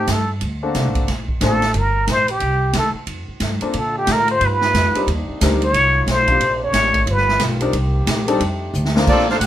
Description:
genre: jazz, big band swing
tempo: 180 BPM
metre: 4/4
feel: swing 62% on 8ths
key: unclear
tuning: A4 = 439 Hz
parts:
  - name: trumpet with plunger mute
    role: melody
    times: 0.0-7.4 s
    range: G4 to Db5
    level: -17 LUFS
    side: equal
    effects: none
  - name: warm baby grand piano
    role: accompaniment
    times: 0.0-1.6, 3.6-9.4 s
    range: G3 to Bb4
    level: -22 LUFS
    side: left 3 dB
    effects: none
  - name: upright bass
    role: bass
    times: 0.0-9.5 s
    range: F#1 to Bb2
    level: -21 LUFS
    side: equal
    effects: none
  - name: swinging big-band drum kit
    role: drums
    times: 0.1-9.5 s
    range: crash cymbal, hi-hat, kick drum, ride cymbal, snare drum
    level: -23 LUFS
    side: equal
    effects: none
  - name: clear trombone section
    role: sustained chords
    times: 3.7-9.1 s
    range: C3 to G4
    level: -30 LUFS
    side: equal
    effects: none
  - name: warm trumpet section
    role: melody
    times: 9.1-9.5 s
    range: C4 to Gb5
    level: -17 LUFS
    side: right 1 dB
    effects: none
  - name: clear trombone section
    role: second line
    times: 9.1-9.5 s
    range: F3 to G4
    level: -23 LUFS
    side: equal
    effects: none
room: moderate studio reverb, RT60 0.5 s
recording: band playing live in one room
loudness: -15 LUFS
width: side -12 dB against mid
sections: 0.0-9.1 A section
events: muted trumpet solo 0.0-9.1; drum fill 8.7-9.1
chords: 0.4 D7b13; 1.1 Gm11; 2.4 Cm; 3.1 F69; 3.7 Bbmaj7; 4.4 G7b13; 5.1 Cm9; 5.7 F7b9; 6.4 Bbmaj9; 7.1 G7alt; 7.7 Cm7; 8.4 F13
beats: 0.08 0.41 0.75 | 1.08 1.42 1.75 2.08 | 2.41 2.75 3.08 3.41 | 3.75 4.08 4.41 4.74 | 5.08 5.41 5.74 6.08 | 6.41 6.74 7.07 7.41 | 7.74 8.07 8.41 8.74 | 9.07 9.40

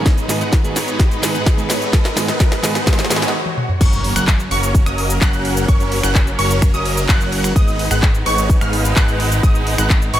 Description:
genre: EDM, festival progressive house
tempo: 128 BPM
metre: 4/4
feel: straight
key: F# major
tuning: A4 = 445 Hz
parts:
  - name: electric guitar at the edge of break-up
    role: accompaniment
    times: 0.0-3.2 s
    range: G#2 to G#4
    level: -24 LUFS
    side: right 3 dB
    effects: sidechain pumping, dub echo
  - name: clear studio string section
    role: sustained chords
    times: 0.0-10.2 s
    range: G#2 to B4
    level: -26 LUFS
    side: equal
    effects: sidechain pumping, low-pass filter
  - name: big supersaw lead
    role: riff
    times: 0.0-10.2 s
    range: F#3 to F#5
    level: -23 LUFS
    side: right 1 dB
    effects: phaser, sidechain pumping, low-pass filter, dub echo
  - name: riser, swell and impact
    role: sound effects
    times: 0.1-5.7 s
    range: none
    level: -28 LUFS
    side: equal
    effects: none
  - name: electronic kick drum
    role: drums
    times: 0.1-10.0 s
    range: none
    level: -14 LUFS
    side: equal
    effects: none
  - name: house drum kit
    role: drums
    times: 0.1-10.2 s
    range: cabasa, crash cymbal, finger snaps, handclaps, hi-hat, ride cymbal, snare drum, toms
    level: -21 LUFS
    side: equal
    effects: none
  - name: wide unison pluck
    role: arpeggios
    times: 3.8-10.2 s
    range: C#6 to F#6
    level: -24 LUFS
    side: right 1 dB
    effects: sidechain pumping, dub echo
  - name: fat analog bass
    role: bass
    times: 3.8-10.2 s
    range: F#1 to G#1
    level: -20 LUFS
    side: equal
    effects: sidechain pumping
room: light reverb, digital ambience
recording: none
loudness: -14 LUFS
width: side -12 dB against mid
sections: 0.0-3.8 A section; 3.8-10.2 B section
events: build-up 0.0-3.8; drum fill 0.0-3.3, 3.5-3.8; riser 0.1-3.3; swell 2.9-3.8; stop 3.3-3.8; drop 3.8-10.2; impact 3.8-5.7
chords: 0.1 G#m; 3.8 F#; 7.6 G#m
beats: | 0.06 0.53 1.00 1.46 | 1.93 2.40 2.87 3.34 | 3.81 4.28 4.75 5.21 | 5.68 6.15 6.62 7.09 | 7.56 8.03 8.50 8.96 | 9.43 9.90

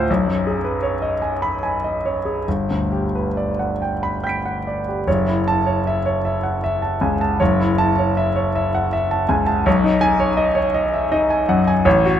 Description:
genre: classical, impressionist solo piano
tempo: 66-86 BPM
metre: 3/4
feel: rubato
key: F# dorian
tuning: A4 = 441 Hz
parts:
  - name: clear grand piano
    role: solo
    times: 0.0-12.2 s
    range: F#1 to D7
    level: -17 LUFS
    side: equal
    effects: none
room: light reverb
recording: close, detailed microphones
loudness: -17 LUFS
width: side -10 dB against mid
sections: 0.0-5.1 A section; 5.1-12.2 B section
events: none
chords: 0.1 B69; 2.5 Gmaj7; 5.1 F#m7; 9.7 B69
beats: | 0.09 0.82 1.60 | 2.46 3.36 4.23 | 5.07 5.86 6.63 | 7.40 8.17 8.94 | 9.67 10.37 11.11 | 11.86

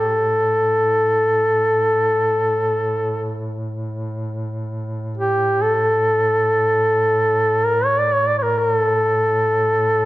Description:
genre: caucasian folk, Caucasian lament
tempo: free time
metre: none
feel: none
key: A major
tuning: A4 = 440 Hz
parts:
  - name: mellow duduk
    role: melody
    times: 0.0-10.1 s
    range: G4 to D5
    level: -16 LUFS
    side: equal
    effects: none
  - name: warm duduk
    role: drone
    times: 0.0-10.1 s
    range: A2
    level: -26 LUFS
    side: right 1 dB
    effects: none
room: wet recital hall reverb, RT60 1.5 s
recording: none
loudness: -16 LUFS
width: side -16 dB against mid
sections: 0.0-10.1 A section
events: slowing down 6.5-10.1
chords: none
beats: free time

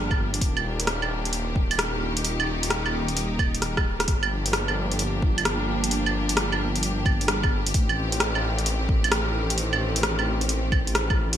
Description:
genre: future garage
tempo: 131 BPM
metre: 4/4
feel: swing 67% on 16ths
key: G minor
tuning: A4 = 440 Hz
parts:
  - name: clear symphonic string section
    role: sustained chords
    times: 0.0-11.4 s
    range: Eb3 to G4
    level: -30 LUFS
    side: equal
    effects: vintage 12-bit sampler grit, sidechain pumping
  - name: swelling detuned saw bass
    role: bass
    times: 0.0-11.4 s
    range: Eb1 to A1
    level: -28 LUFS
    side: equal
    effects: sidechain pumping
  - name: deep house drum kit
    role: drums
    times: 0.1-11.4 s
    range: claves, hi-hat, rim click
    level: -26 LUFS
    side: right 2 dB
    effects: studio reverb, gated reverb
  - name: electronic kick drum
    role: drums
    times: 0.1-11.2 s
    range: none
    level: -24 LUFS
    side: equal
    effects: studio reverb
room: light reverb, digital ambience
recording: bright 1980s-style digital production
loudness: -22 LUFS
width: side -10 dB against mid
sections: 0.0-4.1 A section; 4.1-11.4 B section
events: drum fill 3.6-4.1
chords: 0.4 Ebmaj7; 4.1 Gm7; 7.7 Am7b5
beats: | 0.41 0.87 1.33 1.79 | 2.25 2.70 3.16 3.62 | 4.08 4.54 4.99 5.45 | 5.91 6.37 6.83 7.28 | 7.74 8.20 8.66 9.12 | 9.57 10.03 10.49 10.95

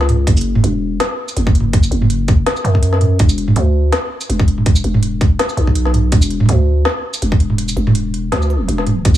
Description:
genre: half-time drum and bass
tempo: 164 BPM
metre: 4/4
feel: swing 54% on 16ths, half-time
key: unclear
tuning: A4 = 440 Hz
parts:
  - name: growling 808-style bass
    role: bass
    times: 0.0-9.2 s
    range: E1 to F#2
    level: -15 LUFS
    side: equal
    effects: tube saturation
  - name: organic electronic drum kit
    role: drums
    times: 0.0-9.2 s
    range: hi-hat, shaker, snare drum, toms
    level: -18 LUFS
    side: right 1 dB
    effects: none
  - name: electronic kick drum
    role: drums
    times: 0.3-9.1 s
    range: none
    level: -11 LUFS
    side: equal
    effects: overdrive
room: little or no reverb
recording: none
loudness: -12 LUFS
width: side -13 dB against mid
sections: 0.0-9.1 A section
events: drop 0.0-9.1; break 7.6-9.1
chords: none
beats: | 0.27 0.64 1.00 1.37 | 1.73 2.10 2.47 2.83 | 3.20 3.56 3.93 4.29 | 4.66 5.03 5.39 5.76 | 6.12 6.49 6.86 7.22 | 7.59 7.95 8.32 8.69 | 9.05

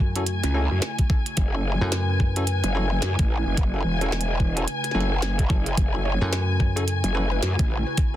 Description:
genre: glitch hop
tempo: 109 BPM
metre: 4/4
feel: swing 60% on 16ths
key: F# minor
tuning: A4 = 439 Hz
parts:
  - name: warbly tape-like pad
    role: sustained chords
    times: 0.0-8.2 s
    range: C#3 to B4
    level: -34 LUFS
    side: right 1 dB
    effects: chorus, built-in reverb, sidechain pumping
  - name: dry thumbed slap bass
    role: bass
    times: 0.0-2.6, 6.2-7.0 s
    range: F#2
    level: -24 LUFS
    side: equal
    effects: none
  - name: electronic kick drum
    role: drums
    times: 0.0-8.1 s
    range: none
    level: -22 LUFS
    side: equal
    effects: overdrive
  - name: muted studio string section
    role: texture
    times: 0.0-8.2 s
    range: G#5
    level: -31 LUFS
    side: left 4 dB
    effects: sidechain pumping
  - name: bell-like tine electric piano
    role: stabs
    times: 0.2-8.2 s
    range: C#4 to A4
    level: -32 LUFS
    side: equal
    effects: sidechain pumping, low-pass filter, digital delay
  - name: glitchy drum kit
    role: drums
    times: 0.2-8.1 s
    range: hi-hat, rim click, snare drum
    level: -29 LUFS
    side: right 1 dB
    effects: none
  - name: growl bass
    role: bass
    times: 0.4-7.8 s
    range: E1 to F#2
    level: -24 LUFS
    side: equal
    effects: chorus, overdrive
  - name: woody wave-folded pluck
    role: melody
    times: 6.1-7.4 s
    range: A4 to C#5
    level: -36 LUFS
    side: left 1 dB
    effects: chorus, digital delay
room: little or no reverb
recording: dense, heavily limited modern master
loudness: -21 LUFS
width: side -13 dB against mid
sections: 0.0-8.2 A section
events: none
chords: 0.0 F#m7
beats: 0.27 0.82 | 1.37 1.92 2.47 3.02 | 3.58 4.13 4.68 5.23 | 5.78 6.33 6.88 7.43 | 7.98

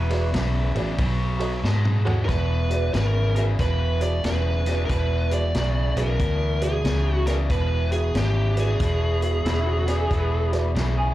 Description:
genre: electric blues shuffle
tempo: 92 BPM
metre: 4/4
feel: swing 64% on 8ths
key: E mixolydian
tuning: A4 = 440 Hz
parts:
  - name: electric guitar through a small old amp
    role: second line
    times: 0.0-1.8, 9.5-11.1 s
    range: E4 to B4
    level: -32 LUFS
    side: right 2 dB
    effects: tremolo, slapback echo
  - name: overdriven semi-hollow guitar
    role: riff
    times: 0.0-11.1 s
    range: E2 to G#3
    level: -29 LUFS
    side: left 3 dB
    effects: none
  - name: vintage muted fingered electric bass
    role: bass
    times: 0.0-11.1 s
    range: E1 to G#2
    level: -23 LUFS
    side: equal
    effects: none
  - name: dark upright piano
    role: accompaniment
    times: 0.1-10.6 s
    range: F#4 to F#5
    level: -31 LUFS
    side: right 4 dB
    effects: slapback echo
  - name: vintage drum kit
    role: drums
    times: 0.1-11.0 s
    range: hi-hat, kick drum, ride cymbal, snare drum, toms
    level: -29 LUFS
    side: equal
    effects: none
  - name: biting lead guitar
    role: melody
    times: 2.3-10.5 s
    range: G4 to D5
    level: -28 LUFS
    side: right 2 dB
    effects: overdrive, slapback echo, digital delay
room: little or no reverb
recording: live gig heard through the venue's PA, club reverb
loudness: -20 LUFS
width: side -15 dB against mid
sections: 0.0-2.3 A section; 2.3-11.1 B section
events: drum fill 1.6-2.3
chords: 0.0 E7; 1.0 B7(no3); 2.3 E7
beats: 0.34 0.99 1.64 | 2.29 2.94 3.59 4.24 | 4.89 5.54 6.19 6.84 | 7.50 8.15 8.80 9.45 | 10.10 10.75

